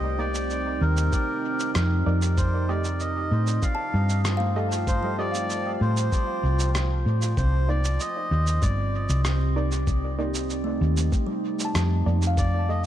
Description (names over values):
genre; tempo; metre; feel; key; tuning
ambient dub; 96 BPM; 4/4; straight; C dorian; A4 = 440 Hz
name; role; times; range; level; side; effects
melodica; melody; 0.0-12.8 s; Bb4 to F5; -31 LUFS; equal; dub echo
deep dark ambient pad; sustained chords; 0.0-12.9 s; C4 to A5; -31 LUFS; right 3 dB; chorus, built-in reverb, vintage 12-bit sampler grit
kalimba; arpeggios; 0.0-6.6, 10.6-12.9 s; G3 to A5; -33 LUFS; left 3 dB; dub echo
hollow-body short-scale fingered electric bass; bass; 0.0-12.9 s; G1 to A2; -24 LUFS; equal; none
filtered dub chord stab; stabs; 0.2-12.9 s; A3 to Eb5; -36 LUFS; right 3 dB; chorus, dub echo
electronic cabasa and rim click; drums; 0.3-12.5 s; none; -34 LUFS; right 2 dB; overdrive, dub echo
electronic kick drum; drums; 1.1-12.5 s; none; -25 LUFS; equal; overdrive
room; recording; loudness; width
light reverb; none; -22 LUFS; side -12 dB against mid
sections
0.0-12.9 A section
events
none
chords
0.0 Cm9; 2.4 F9; 7.4 Cm9